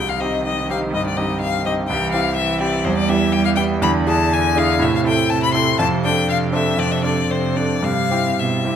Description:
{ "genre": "quick classical-period movement for piano trio", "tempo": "122 BPM", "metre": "4/4", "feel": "rubato", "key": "C major", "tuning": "A4 = 440 Hz", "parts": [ { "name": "clear violin", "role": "melody", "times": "0.0-8.8 s", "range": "C5 to C6", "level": "-21 LUFS", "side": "left 6 dB", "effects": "none" }, { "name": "clear cello", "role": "second line", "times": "0.0-8.8 s", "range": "B2 to G3", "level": "-24 LUFS", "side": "right 6 dB", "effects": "none" }, { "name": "clear concert grand piano", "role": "accompaniment", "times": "0.0-8.8 s", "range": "C2 to A4", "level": "-19 LUFS", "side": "right 1 dB", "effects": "none" } ], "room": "moderate recital hall reverb, RT60 1.5 s", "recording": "none", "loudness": "-16 LUFS", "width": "side -8 dB against mid", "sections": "0.0-8.8 A section", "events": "none", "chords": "0.0 Cm; 1.9 C; 2.9 Em; 3.8 E7; 4.8 Am; 5.8 Dm7/F; 7.8 C/G" }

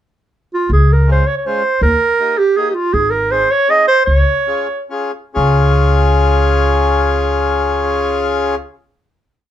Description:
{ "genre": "alpine folk, alpine dance band", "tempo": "130-162 BPM", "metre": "3/4", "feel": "straight", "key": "Db major", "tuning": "A4 = 440 Hz", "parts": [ { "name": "bright clarinet", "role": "melody", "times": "0.5-4.9 s", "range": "F4 to Eb5", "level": "-13 LUFS", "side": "right 3 dB", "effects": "none" }, { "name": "upright bass", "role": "bass", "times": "0.7-8.6 s", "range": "Ab1 to Eb2", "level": "-14 LUFS", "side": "equal", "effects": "none" }, { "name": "accordion", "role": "accompaniment", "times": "1.1-8.6 s", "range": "Ab3 to Ab4", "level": "-16 LUFS", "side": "left 2 dB", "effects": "none" } ], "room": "moderate small room reverb, RT60 0.5 s", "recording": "band playing live in one room", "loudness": "-12 LUFS", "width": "side -11 dB against mid", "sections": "0.0-0.7 pickup bar; 0.7-5.4 A section; 5.4-8.1 final chord", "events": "slowing down 2.9-5.4", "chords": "0.0 N.C.; 0.7 Db; 1.8 Eb; 2.9 Ab; 4.1 Db" }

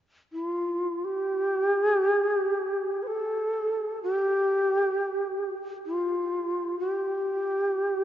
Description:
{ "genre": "japanese traditional", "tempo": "free time", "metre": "none", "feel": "none", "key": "unclear", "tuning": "A4 = 440 Hz", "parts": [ { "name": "breathy shakuhachi", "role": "melody", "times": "0.3-8.0 s", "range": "F4 to C5", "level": "-25 LUFS", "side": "equal", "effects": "none" } ], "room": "wet cathedral reverb, RT60 5.2 s", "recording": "dark, warm production, nothing above 7.5 kHz", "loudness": "-25 LUFS", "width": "side -11 dB against mid", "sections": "0.0-8.0 A section", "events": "none", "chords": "none" }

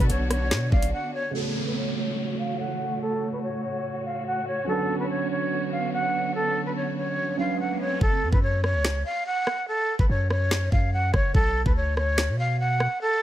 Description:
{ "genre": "hip hop, drill", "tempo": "144 BPM", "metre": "4/4", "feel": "half-time", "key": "F# harmonic minor", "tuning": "A4 = 440 Hz", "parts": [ { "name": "breathy jazz flute", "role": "melody", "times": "0.0-13.2 s", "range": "A4 to F#5", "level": "-27 LUFS", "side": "equal", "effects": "low-pass filter, ping-pong delay" }, { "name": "warbly dusty pluck", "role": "second line", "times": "0.0-0.9 s", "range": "C#5 to D5", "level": "-38 LUFS", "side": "right 2 dB", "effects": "chorus, phaser, ping-pong delay" }, { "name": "clear symphonic string section", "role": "sustained chords", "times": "0.0-8.0 s", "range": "A2 to C#5", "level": "-33 LUFS", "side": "left 1 dB", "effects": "low-pass filter" }, { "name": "long sustained 808-style bass", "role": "bass", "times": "0.0-0.9, 8.0-12.9 s", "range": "F#1 to B2", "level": "-25 LUFS", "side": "equal", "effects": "none" }, { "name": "drill drum kit", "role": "drums", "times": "0.1-0.9, 8.0-12.9 s", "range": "finger snaps, hi-hat, kick drum, rim click, snare drum", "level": "-24 LUFS", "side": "equal", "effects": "none" }, { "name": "barky tine electric piano", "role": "accompaniment", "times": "1.3-8.0 s", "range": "C#3 to B4", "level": "-30 LUFS", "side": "right 5 dB", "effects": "phaser, low-pass filter" }, { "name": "downlifter and riser", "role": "sound effects", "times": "1.3-8.0 s", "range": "none", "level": "-35 LUFS", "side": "right 1 dB", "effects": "none" } ], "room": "little or no reverb", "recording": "none", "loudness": "-23 LUFS", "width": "side -12 dB against mid", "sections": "0.0-1.3 A section; 1.3-8.0 B section; 8.0-13.2 C section", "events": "break 0.9-1.3; filter sweep 1.3-8.0; riser 7.0-8.0; hi-hats muted 8.0-13.2", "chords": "0.0 Bmadd9; 1.3 F#m; 4.7 Bmadd9; 8.0 F#5; 11.3 Bmadd9" }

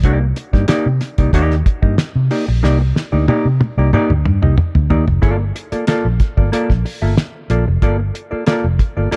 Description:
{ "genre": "funk", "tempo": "92 BPM", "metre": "4/4", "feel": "straight", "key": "G minor", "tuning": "A4 = 440 Hz", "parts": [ { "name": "hollow-body jazz guitar", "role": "accompaniment", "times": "0.0-9.2 s", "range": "Bb3 to E5", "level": "-22 LUFS", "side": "equal", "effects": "none" }, { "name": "vintage muted fingered electric bass", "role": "bass", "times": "0.0-9.2 s", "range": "F1 to C3", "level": "-18 LUFS", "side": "equal", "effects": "none" }, { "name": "cloth-damped thuddy drum kit", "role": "drums", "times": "0.0-9.2 s", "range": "hi-hat, kick drum, snare drum, toms", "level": "-18 LUFS", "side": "equal", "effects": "none" } ], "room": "small room ambience", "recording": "dark, warm production", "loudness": "-16 LUFS", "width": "mono", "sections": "0.0-5.2 A section; 5.2-9.2 B section", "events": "drum fill 2.6-5.2", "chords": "0.0 Cm9; 5.2 Gm9" }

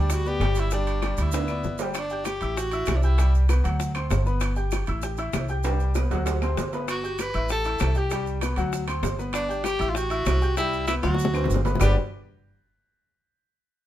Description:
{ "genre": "Afro-Cuban jazz", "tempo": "195 BPM", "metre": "4/4", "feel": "straight", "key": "G major", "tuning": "A4 = 440 Hz", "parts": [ { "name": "clear tenor saxophone", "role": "melody", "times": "0.0-3.3, 6.9-12.0 s", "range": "D4 to B4", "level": "-28 LUFS", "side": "equal", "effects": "none" }, { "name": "bright upright piano", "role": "accompaniment", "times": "0.0-12.0 s", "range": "F#3 to G6", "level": "-31 LUFS", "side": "left 2 dB", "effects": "none" }, { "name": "upright bass", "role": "bass", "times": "0.0-12.0 s", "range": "G1 to D2", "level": "-25 LUFS", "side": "equal", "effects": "none" }, { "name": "bongos", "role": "percussion", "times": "0.1-11.9 s", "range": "none", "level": "-32 LUFS", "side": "left 4 dB", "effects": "none" }, { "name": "maracas", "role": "percussion", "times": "0.1-11.9 s", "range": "none", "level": "-42 LUFS", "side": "right 6 dB", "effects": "none" }, { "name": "timbales", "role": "percussion", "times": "0.1-11.9 s", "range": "none", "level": "-34 LUFS", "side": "right 7 dB", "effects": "none" }, { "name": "claves", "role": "percussion", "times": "0.4-11.9 s", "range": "none", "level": "-38 LUFS", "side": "left 6 dB", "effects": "none" } ], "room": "moderate studio reverb, RT60 0.8 s", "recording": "minimal, uncompressed stereo recording", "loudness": "-22 LUFS", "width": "side -12 dB against mid", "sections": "0.0-2.0 A section; 2.0-11.8 B section; 11.8-13.0 C section", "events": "drum fill 1.3-2.0, 5.6-6.9, 11.0-11.8", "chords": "0.0 G; 2.0 G5; 2.6 Am7; 3.2 C5; 3.8 D7; 4.4 G; 5.0 Am7; 5.6 C5; 6.3 D7; 6.9 Gmaj7; 7.5 Am7; 8.1 C5; 8.7 D7; 9.3 G; 10.0 Am7; 10.6 Cmaj7; 11.2 D7; 11.8 Gmaj7" }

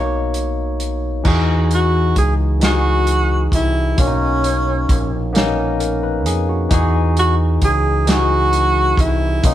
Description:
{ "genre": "slow six-eight R&B", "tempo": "44 BPM (dotted quarters)", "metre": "6/8", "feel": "straight", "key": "E lydian", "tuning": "A4 = 438 Hz", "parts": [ { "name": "barky tine electric piano", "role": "accompaniment", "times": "0.0-9.5 s", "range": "B2 to C#5", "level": "-21 LUFS", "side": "left 2 dB", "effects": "medium stereo tremolo" }, { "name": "deep dub fingered electric bass", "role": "bass", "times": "0.0-9.5 s", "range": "A#1 to F2", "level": "-18 LUFS", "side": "equal", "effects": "none" }, { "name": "warm soul drum kit", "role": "drums", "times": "0.3-9.5 s", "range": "crash cymbal, hi-hat, kick drum, snare drum", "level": "-19 LUFS", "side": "equal", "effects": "none" }, { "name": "breathy tenor saxophone", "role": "melody", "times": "1.7-9.5 s", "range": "C#4 to G#4", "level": "-18 LUFS", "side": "right 1 dB", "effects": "none" } ], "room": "light reverb", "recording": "band playing live in one room", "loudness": "-14 LUFS", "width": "side -12 dB against mid", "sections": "0.0-1.3 A section; 1.3-9.5 B section", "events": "none", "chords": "0.0 Bmaj9; 1.3 Emaj9; 4.0 Bmaj9; 6.7 Emaj9" }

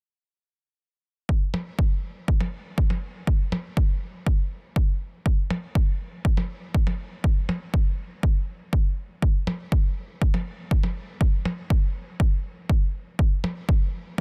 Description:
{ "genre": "melodic techno", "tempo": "121 BPM", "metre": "4/4", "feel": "straight", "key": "none", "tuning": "none", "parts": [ { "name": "electronic kick drum", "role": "drums", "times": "1.3-14.2 s", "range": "none", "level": "-24 LUFS", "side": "equal", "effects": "none" }, { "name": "percussion blips", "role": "drums", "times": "1.5-13.5 s", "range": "none", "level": "-35 LUFS", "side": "equal", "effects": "none" } ], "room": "digital ambience", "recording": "dense, heavily limited modern master", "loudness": "-25 LUFS", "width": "mono", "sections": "1.3-14.2 A section", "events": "none", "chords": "none" }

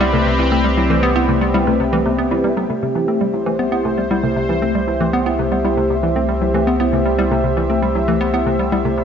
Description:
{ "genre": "ambient, sequencer-driven space music", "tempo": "117 BPM", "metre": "4/4", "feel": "straight", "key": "unclear", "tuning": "A4 = 444 Hz", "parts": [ { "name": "sweeping resonant pad", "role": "sustained chords", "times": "0.0-9.0 s", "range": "C4 to E5", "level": "-19 LUFS", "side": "equal", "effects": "chorus" }, { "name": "thumb-piano-like synth pluck", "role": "arpeggios", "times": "0.0-8.9 s", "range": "A3 to E4", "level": "-22 LUFS", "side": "left 1 dB", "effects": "chorus, auto-pan, tape echo" }, { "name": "hollow square pluck", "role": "riff", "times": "0.0-9.0 s", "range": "C3 to C4", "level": "-20 LUFS", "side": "equal", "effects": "chorus, vintage 12-bit sampler grit, tape echo" }, { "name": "round analog bass", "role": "bass", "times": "0.0-9.0 s", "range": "C2", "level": "-23 LUFS", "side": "equal", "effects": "none" } ], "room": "wet echo chamber reverb, RT60 2.0 s", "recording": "echo-heavy mix, nothing above 7.5 kHz", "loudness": "-15 LUFS", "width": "side -7 dB against mid", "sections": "0.0-2.7 A section; 2.7-9.0 B section", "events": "none", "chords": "0.0 Cmaj7" }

